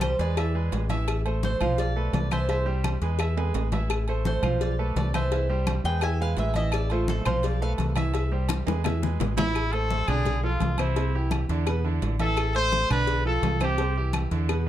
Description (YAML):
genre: latin, salsa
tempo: 170 BPM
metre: 4/4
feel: straight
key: A minor from 9.6 s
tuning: A4 = 437 Hz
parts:
  - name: Cuban tres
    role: melody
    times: 0.0-7.7 s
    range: F4 to G#5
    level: -31 LUFS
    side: right 1 dB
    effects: tape echo
  - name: clear grand piano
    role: accompaniment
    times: 0.0-14.7 s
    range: B2 to F5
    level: -31 LUFS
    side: right 4 dB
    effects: none
  - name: deep dub fingered electric bass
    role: bass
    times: 0.0-14.7 s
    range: A1 to E2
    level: -26 LUFS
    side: equal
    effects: none
  - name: agogo bells and timbales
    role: percussion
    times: 0.0-14.7 s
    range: none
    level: -35 LUFS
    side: right 4 dB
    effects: none
  - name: claves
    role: percussion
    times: 0.0-14.7 s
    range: none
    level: -39 LUFS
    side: left 10 dB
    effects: none
  - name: congas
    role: percussion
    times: 0.0-14.7 s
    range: none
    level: -32 LUFS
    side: left 1 dB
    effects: none
  - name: cowbell and bongos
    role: percussion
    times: 0.0-14.7 s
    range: none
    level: -34 LUFS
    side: left 7 dB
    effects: none
  - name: warm trumpet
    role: melody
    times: 9.4-14.1 s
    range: E4 to C5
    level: -27 LUFS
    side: left 1 dB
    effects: none
room: little or no reverb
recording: close, detailed microphones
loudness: -23 LUFS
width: side -12 dB against mid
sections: 0.0-9.6 A section; 9.6-14.7 B section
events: Cuban tres solo 0.0-9.6; drum fill 3.4-3.9, 8.5-9.6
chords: 0.4 E7; 1.1 Am; 1.8 Bm7b5; 2.5 C; 3.2 E; 3.9 Am; 4.6 Bm7b5; 5.3 C; 6.0 E; 6.7 Am; 7.4 Dm13/B; 8.1 C; 8.8 E; 9.6 Am; 10.3 Bm7b5; 11.0 C; 11.7 E5; 12.4 Am; 13.1 Bm7b5; 13.8 C